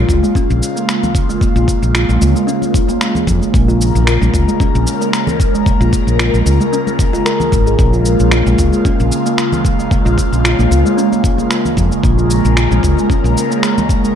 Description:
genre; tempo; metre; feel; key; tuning
organic downtempo; 113 BPM; 4/4; swing 54% on 16ths; Bb minor; A4 = 440 Hz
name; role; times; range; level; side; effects
airy breathy pad; sustained chords; 0.0-14.2 s; Db3 to Bb4; -17 LUFS; right 1 dB; chorus, phaser, sidechain pumping
kalimba; arpeggios; 0.0-14.2 s; Ab3 to Bb4; -18 LUFS; equal; ping-pong delay
woody fretless electric bass; bass; 0.0-13.3 s; Ab1 to F2; -13 LUFS; equal; sidechain pumping
electronic cabasa and finger snaps; drums; 0.1-14.1 s; none; -21 LUFS; equal; overdrive
electronic kick drum; drums; 0.1-14.0 s; none; -16 LUFS; equal; overdrive
congas; percussion; 0.1-13.9 s; none; -24 LUFS; left 3 dB; none
room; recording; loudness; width
light reverb; dark, warm production; -11 LUFS; side -9 dB against mid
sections
0.0-14.2 A section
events
none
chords
0.0 Bbm7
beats
0.36 0.89 | 1.42 1.95 2.48 3.01 | 3.54 4.07 4.60 5.13 | 5.67 6.20 6.73 7.26 | 7.79 8.32 8.85 9.38 | 9.91 10.44 10.97 11.51 | 12.04 12.57 13.10 13.63

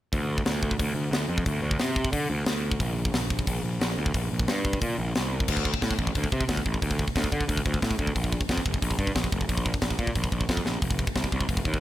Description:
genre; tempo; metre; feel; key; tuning
heavy metal; 180 BPM; 4/4; straight; D minor; A4 = 440 Hz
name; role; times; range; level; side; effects
fuzz picked electric bass; bass; 0.1-11.8 s; F1 to D3; -28 LUFS; equal; overdrive
tight metal drum kit; drums; 0.1-11.8 s; crash cymbal, hi-hat, kick drum, snare drum; -27 LUFS; equal; none
room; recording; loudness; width
little or no reverb; none; -24 LUFS; side -14 dB against mid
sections
0.1-5.5 A section; 5.5-11.8 B section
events
drum fill 10.7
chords
none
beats
| 0.13 0.46 0.80 1.13 | 1.47 1.80 2.14 2.47 | 2.81 3.14 3.48 3.81 | 4.14 4.48 4.81 5.15 | 5.48 5.82 6.15 6.48 | 6.82 7.15 7.49 7.82 | 8.15 8.49 8.82 9.16 | 9.49 9.82 10.16 10.49 | 10.82 11.16 11.49

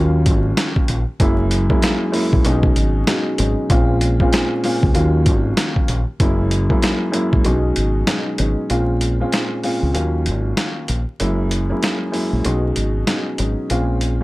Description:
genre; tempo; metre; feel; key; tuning
hip hop, boom-bap hip-hop; 96 BPM; 4/4; swing 59% on 16ths; Bb phrygian; A4 = 440 Hz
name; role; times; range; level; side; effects
dark upright piano; accompaniment; 0.0-14.2 s; Eb2 to F4; -20 LUFS; equal; cassette tape, high-pass filter, low-pass filter
deep dub fingered electric bass; bass; 0.0-14.2 s; Gb1 to Eb2; -19 LUFS; equal; none
boom bap sampler-style drum kit; drums; 0.3-14.2 s; hi-hat, kick drum, snare drum; -19 LUFS; equal; none
room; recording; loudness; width
little or no reverb; dry, gritty hardware recording, vinyl crackle; -16 LUFS; side -20 dB against mid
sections
0.0-8.7 A section; 8.7-14.2 B section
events
kick muted 7.5-8.7; break 8.7-14.2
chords
0.0 Ebm7; 1.2 Gb7; 2.5 B6; 3.7 Bbm9; 5.0 Ebm7; 6.2 Gb7; 7.5 B6; 8.7 Bbm9; 9.9 Ebm7; 11.2 Gb7; 12.4 B6; 13.7 Bbm9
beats
0.57 | 1.20 1.82 2.45 3.08 | 3.70 4.33 4.95 5.58 | 6.20 6.83 7.45 8.07 | 8.70 9.32 9.95 10.57 | 11.20 11.82 12.45 13.07 | 13.70

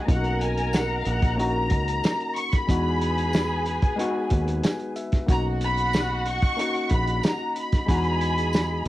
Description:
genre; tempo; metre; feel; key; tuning
lush 1970s-style soul; 92 BPM; 4/4; straight; B major; A4 = 440 Hz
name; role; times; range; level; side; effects
muted studio string section; second line; 0.0-8.8 s; F#4 to A#5; -32 LUFS; equal; cassette tape
barky reed electric piano; accompaniment; 0.0-8.9 s; G#3 to G#5; -30 LUFS; left 3 dB; overdrive, spring reverb, cassette tape
hollow flute section; sustained chords; 0.0-8.9 s; F#4 to G#5; -38 LUFS; right 1 dB; cassette tape
warm studio violin section; melody; 0.1-8.9 s; E#5 to C#6; -28 LUFS; left 1 dB; cassette tape
overdriven fingered electric bass; bass; 0.1-8.9 s; A#1 to E2; -26 LUFS; equal; transformer saturation
warm soul drum kit; drums; 0.1-8.9 s; hi-hat, kick drum, snare drum; -24 LUFS; equal; cassette tape
tambourine; percussion; 0.7-8.7 s; none; -45 LUFS; right 4 dB; none
room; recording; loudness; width
light reverb; home recording on cassette; -22 LUFS; side -15 dB against mid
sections
0.0-8.9 A section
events
reed electric piano fill 4.3-5.3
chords
0.1 Bmaj7; 2.7 Emaj7; 5.3 Bmaj7; 7.9 Emaj7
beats
| 0.09 0.74 1.39 2.04 | 2.69 3.34 3.99 4.64 | 5.29 5.94 6.59 7.24 | 7.88 8.53

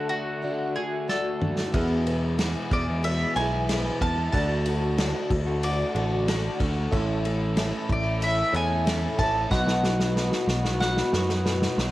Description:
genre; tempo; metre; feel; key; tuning
folk rock and heartland rock; 93 BPM; 4/4; straight; unclear; A4 = 439 Hz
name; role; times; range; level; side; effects
mandolin; melody; 0.0-11.7 s; F#4 to A5; -30 LUFS; right 1 dB; tape echo
picked twelve-string acoustic guitar; accompaniment; 0.0-11.9 s; E2 to G#4; -31 LUFS; left 3 dB; ensemble chorus, cassette tape
reed electric piano; accompaniment; 0.0-11.9 s; D#4 to F#5; -34 LUFS; right 2 dB; fast tremolo, cassette tape
pedal harmonium; sustained chords; 0.0-1.7, 6.9-11.9 s; A3 to B5; -34 LUFS; right 1 dB; cassette tape
overdriven semi-hollow guitar; riff; 0.0-11.9 s; E2 to F#4; -33 LUFS; right 1 dB; cassette tape
unplugged drum kit; drums; 1.1-11.9 s; kick drum, ride cymbal, snare drum, toms; -29 LUFS; equal; cassette tape
picked electric bass; bass; 1.7-11.9 s; A1 to F#2; -27 LUFS; equal; none
room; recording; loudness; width
light reverb, studio reverb; home recording on cassette; -23 LUFS; side -16 dB against mid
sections
0.0-1.7 A section; 1.7-11.9 B section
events
break 0.0-1.7; drum fill 1.1-1.7, 9.5-11.9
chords
0.0 D; 1.7 E; 4.3 D; 6.9 A; 9.5 B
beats
0.45 1.09 | 1.74 2.39 3.04 3.69 | 4.33 4.98 5.63 6.27 | 6.92 7.57 8.21 8.86 | 9.51 10.16 10.81 11.46

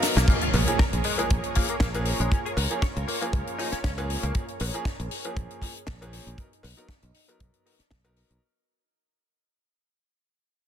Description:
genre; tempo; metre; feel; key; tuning
nu-disco, nu disco; 118 BPM; 4/4; swing 54% on 16ths; Bb phrygian; A4 = 440 Hz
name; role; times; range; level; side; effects
bright concert grand piano; accompaniment; 0.0-8.4 s; F3 to A#4; -33 LUFS; right 2 dB; sidechain pumping, tape echo
lush unison pad; sustained chords; 0.0-8.4 s; D#4 to Db5; -35 LUFS; right 1 dB; chorus, sidechain pumping
tight funk drum kit; drums; 0.0-8.4 s; crash cymbal, hi-hat, ride cymbal, shaker, snare drum; -30 LUFS; left 3 dB; none
direct-recorded clean electric guitar; riff; 0.2-4.3 s; Ab3 to Db5; -35 LUFS; left 4 dB; ensemble chorus, tape echo
modern bright fingered electric bass; bass; 0.2-8.4 s; Bb1 to Db2; -27 LUFS; equal; sidechain pumping
kick drum; drums; 0.3-8.0 s; none; -24 LUFS; equal; soft clipping on snare
impact; sound effects; 0.3-2.3 s; none; -31 LUFS; right 1 dB; none
cowbell; percussion; 0.5-8.1 s; none; -37 LUFS; left 2 dB; none
room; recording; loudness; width
little or no reverb; dense, heavily limited modern master; -24 LUFS; side -9 dB against mid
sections
0.3-8.4 A section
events
drum fill 0.0; band accent 0.2; fade-out 0.3-8.4; impact 0.3-2.3; filter sweep on analog synth pad 0.3-8.4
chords
0.3 Bbm7; 2.3 Db6; 4.3 Bbm7; 6.4 Bmaj7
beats
| 0.28 0.79 1.30 1.81 | 2.32 2.82 3.33 3.84 | 4.35 4.86 5.37 5.88 | 6.38 6.89 7.40 7.91

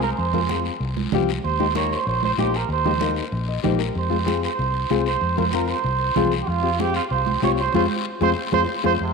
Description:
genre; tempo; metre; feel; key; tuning
latin, cumbia; 190 BPM; 4/4; straight; F minor; A4 = 437 Hz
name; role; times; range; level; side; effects
brilliant trombone; second line; 0.0-9.1 s; C3 to Db5; -24 LUFS; right 6 dB; none
nylon-string guitar; accompaniment; 0.0-8.9 s; Bb3 to Eb5; -25 LUFS; left 13 dB; none
vintage muted fingered electric bass; bass; 0.0-9.1 s; Bb1 to F2; -26 LUFS; left 1 dB; none
guiro; percussion; 0.0-9.1 s; none; -35 LUFS; left 11 dB; none
congas; percussion; 0.2-9.1 s; none; -28 LUFS; right 10 dB; none
room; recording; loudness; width
wet plate reverb, RT60 2.6 s; 1960s-style stereo with parts hard left and right; -19 LUFS; side -4 dB against mid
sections
0.0-9.0 A section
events
trombone solo 0.0-9.0; nylon-string guitar fill 3.3-4.0; band accent 7.7-9.0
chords
0.0 Fm; 1.4 Eb; 4.0 Fm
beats
| 0.18 0.50 0.81 1.13 | 1.44 1.75 2.07 2.38 | 2.70 3.01 3.33 3.64 | 3.96 4.27 4.59 4.91 | 5.22 5.54 5.85 6.17 | 6.48 6.79 7.11 7.43 | 7.74 8.06 8.37 8.69 | 9.00

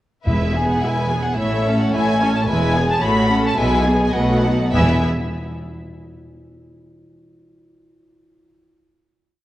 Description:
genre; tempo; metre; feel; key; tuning
quick classical-period movement for symphony orchestra; 107 BPM; 2/4; rubato; E major; A4 = 440 Hz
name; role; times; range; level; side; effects
rich chamber violin section; second line; 0.2-5.0 s; F#4 to G#5; -24 LUFS; left 1 dB; none
rich chamber violin section; melody; 0.3-5.1 s; E5 to B5; -23 LUFS; left 1 dB; none
clear chamber viola section; accompaniment; 0.3-5.0 s; G#3 to A4; -23 LUFS; equal; none
rich chamber double bass section; bass; 0.3-5.0 s; E1 to B1; -23 LUFS; right 1 dB; none
warm symphonic cello section; bass; 0.3-5.0 s; E2 to B2; -22 LUFS; equal; none
timpani; percussion; 0.3-1.1, 4.7-5.0 s; E2; -26 LUFS; equal; none
room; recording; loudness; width
wet concert hall reverb, RT60 2.2 s; worn, warbling old tape, cassette tape, warbly pitch drift; -16 LUFS; side -14 dB against mid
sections
0.3-4.7 theme; 4.7-5.9 final chord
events
none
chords
0.3 E; 1.4 A; 2.5 E; 3.0 F#m/A; 3.6 E/B; 4.1 B7; 4.7 E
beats
| 0.27 0.83 | 1.38 1.94 | 2.49 3.02 | 3.58 4.14 | 4.73

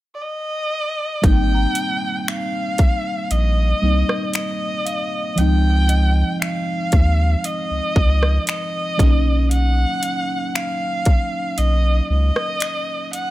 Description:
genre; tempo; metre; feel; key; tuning
contemporary R&B; 58 BPM; 4/4; straight; Ab major; A4 = 436 Hz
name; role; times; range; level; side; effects
rich erhu; melody; 0.1-13.3 s; D5 to G5; -23 LUFS; equal; none
muted felt-like synth keys; accompaniment; 1.2-13.3 s; F3 to Eb4; -25 LUFS; right 1 dB; chorus
saturated sub bass; bass; 1.2-12.3 s; Ab1 to Eb2; -16 LUFS; equal; none
trap drum kit; drums; 1.2-13.3 s; finger snaps, hi-hat, kick drum, rim click; -18 LUFS; equal; none
small celesta; texture; 1.2-9.5 s; Eb5 to Bb5; -37 LUFS; left 1 dB; none
room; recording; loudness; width
digital ambience; none; -17 LUFS; side -16 dB against mid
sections
0.0-1.2 A section; 1.2-13.3 B section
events
none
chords
0.0 N.C.; 1.2 Abmaj9 (rootless); 5.4 Dbmaj9; 9.0 Bmaj9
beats
0.20 | 1.23 2.27 3.30 4.34 | 5.37 6.41 7.44 8.48 | 9.51 10.54 11.58 12.61

